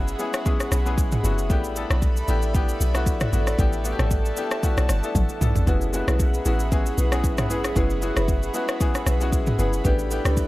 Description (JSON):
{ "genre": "amapiano", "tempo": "115 BPM", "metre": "4/4", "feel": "swing 55% on 16ths", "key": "F# minor", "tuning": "A4 = 440 Hz", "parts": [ { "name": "clear concert grand piano", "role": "accompaniment", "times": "0.0-10.5 s", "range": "G#3 to A4", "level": "-28 LUFS", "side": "left 2 dB", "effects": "tape echo" }, { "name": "airy breathy pad", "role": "sustained chords", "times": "0.0-10.5 s", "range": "G#4 to B5", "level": "-32 LUFS", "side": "right 1 dB", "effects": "chorus, sidechain pumping" }, { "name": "deep log drum bass", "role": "bass", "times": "0.0-10.5 s", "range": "F#1 to C#2", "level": "-24 LUFS", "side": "equal", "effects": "none" }, { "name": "deep house drum kit", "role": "drums", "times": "0.1-10.5 s", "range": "kick drum, rim click, shaker, toms", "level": "-24 LUFS", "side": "equal", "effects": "none" }, { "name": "marimba with soft mallets", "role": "stabs", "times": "5.7-10.3 s", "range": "D4 to B4", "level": "-30 LUFS", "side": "equal", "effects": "tape echo" } ], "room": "digital ambience", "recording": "echo-heavy mix", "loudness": "-20 LUFS", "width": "side -18 dB against mid", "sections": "0.0-10.5 A section", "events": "drum fill 5.2-5.7", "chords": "0.0 F#9sus4; 1.5 A9sus4; 5.7 F#9sus4; 9.8 A9sus4", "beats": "0.46 0.98 | 1.50 2.02 2.54 3.06 | 3.59 4.11 4.63 5.15 | 5.67 6.20 6.72 7.24 | 7.76 8.28 8.80 9.33 | 9.85 10.37" }